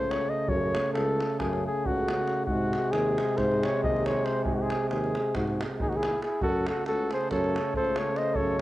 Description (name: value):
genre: balkan folk, Balkan brass band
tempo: 274 BPM (eighths)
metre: 9/8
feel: straight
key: unclear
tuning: A4 = 440 Hz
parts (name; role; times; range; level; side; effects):
- warm flugelhorn; melody; 0.0-8.6 s; F#4 to D#5; -29 LUFS; left 1 dB; cassette tape, tape echo
- mellow trombone; accompaniment; 0.0-8.6 s; B#2 to C#3; -33 LUFS; right 3 dB; none
- warm euphonium; accompaniment; 0.0-8.6 s; G#3 to A3; -34 LUFS; left 2 dB; none
- mellow tuba; bass; 0.0-8.6 s; C#2 to G#2; -32 LUFS; equal; none
- davul; percussion; 0.1-8.5 s; none; -35 LUFS; right 1 dB; none
- mellow trumpet; second line; 5.8-8.6 s; D#4 to B#4; -33 LUFS; right 3 dB; none
room: studio reverb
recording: home recording on cassette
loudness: -25 LUFS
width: side -16 dB against mid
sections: 0.0-8.6 A section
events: none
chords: 0.0 F#m; 2.5 G#; 6.4 F#m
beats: 0.06 0.28 | 0.50 0.72 0.94 1.16 1.38 1.60 1.82 2.04 2.26 | 2.48 2.70 2.92 3.14 3.36 3.58 3.80 4.02 4.24 | 4.46 4.67 4.89 5.11 5.33 5.55 5.76 5.98 6.20 | 6.42 6.63 6.85 7.07 7.28 7.50 7.71 7.93 8.15 | 8.36 8.58